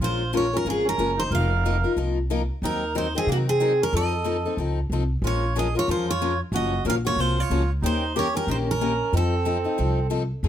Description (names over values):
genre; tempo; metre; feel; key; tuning
acoustic string swing (jazz manouche); 184 BPM; 4/4; swing 59% on 8ths; Bb minor; A4 = 440 Hz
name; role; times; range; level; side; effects
picked steel-string acoustic guitar; melody; 0.0-10.1 s; Gb4 to F5; -26 LUFS; right 2 dB; none
melodica; second line; 0.0-10.1 s; Bb3 to Bb4; -31 LUFS; right 6 dB; none
picked steel-string acoustic guitar; accompaniment; 0.0-10.5 s; Db3 to Bb4; -27 LUFS; left 5 dB; none
upright bass; bass; 0.0-10.5 s; F1 to C3; -26 LUFS; equal; none
room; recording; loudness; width
light reverb; close, detailed microphones; -21 LUFS; side -10 dB against mid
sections
0.0-10.4 A section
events
none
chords
0.0 Bbm7; 1.3 F7sus4; 2.6 Cm7b5/Eb; 3.9 F7; 5.2 Bbm7; 6.5 Gbmaj7; 7.8 Eb7; 9.1 F7